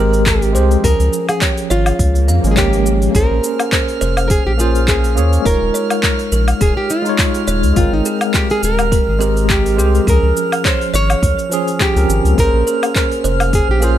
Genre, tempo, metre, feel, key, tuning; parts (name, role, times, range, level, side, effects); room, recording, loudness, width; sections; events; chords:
sunset chillout; 104 BPM; 4/4; swing 55% on 16ths; A4 = 440 Hz
nylon-string guitar; melody; 0.0-14.0 s; Eb4 to Db5; -20 LUFS; right 1 dB; tape echo
tine electric piano; accompaniment; 0.0-14.0 s; F3 to G5; -20 LUFS; left 1 dB; fast stereo tremolo, auto-pan
buzzing kalimba; arpeggios; 0.0-14.0 s; G4 to F5; -25 LUFS; right 5 dB; tape echo
round analog bass; bass; 0.0-14.0 s; Eb1 to F2; -15 LUFS; equal
deep house drum kit; drums; 0.1-13.9 s; cabasa, handclaps, hi-hat, woodblock; -21 LUFS; left 1 dB
electronic kick drum; drums; 0.3-13.7 s; -18 LUFS; equal
swell; sound effects; 2.1-3.1 s; -24 LUFS; right 4 dB
drifting glass-harmonics texture; texture; 3.4-14.0 s; F6; -26 LUFS; right 4 dB; chorus, built-in reverb
little or no reverb; -12 LUFS; side -11 dB against mid
0.0-14.0 A section
swell 2.1-3.1
0.0 Abmaj9; 0.8 Db; 3.1 Bbm9; 5.5 Eb9sus4; 7.8 Abmaj9; 10.1 Dbmaj7; 12.4 Bbm9